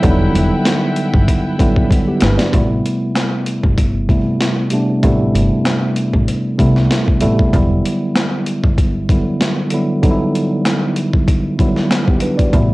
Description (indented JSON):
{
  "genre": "hip hop, boom-bap hip-hop",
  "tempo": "96 BPM",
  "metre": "4/4",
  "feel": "swing 54% on 16ths",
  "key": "A minor",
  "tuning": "A4 = 440 Hz",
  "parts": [
    { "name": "mellow tine electric piano", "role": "accompaniment", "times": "0.0-12.7 s", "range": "C3 to D5", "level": "-16 LUFS", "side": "right 1 dB", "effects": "fast stereo tremolo, high-pass filter, low-pass filter, cassette tape" },
    { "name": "warm studio string section", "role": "sustained chords", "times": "0.0-2.5 s", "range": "E4 to G5", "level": "-25 LUFS", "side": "left 2 dB", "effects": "high-pass filter, low-pass filter, cassette tape" },
    { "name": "upright bass", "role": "bass", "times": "0.0-12.7 s", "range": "E1 to C2", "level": "-18 LUFS", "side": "equal", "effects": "none" },
    { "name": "boom bap sampler-style drum kit", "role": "drums", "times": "0.0-12.7 s", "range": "hi-hat, kick drum, snare drum", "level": "-16 LUFS", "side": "equal", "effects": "overdrive, cassette tape" }
  ],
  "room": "little or no reverb",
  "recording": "home recording on cassette",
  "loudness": "-13 LUFS",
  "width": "side -20 dB against mid",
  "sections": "0.0-2.5 A section; 2.5-12.7 B section",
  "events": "drum fill 1.3-2.5",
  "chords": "0.0 Em9; 2.5 Am9; 7.5 Em9"
}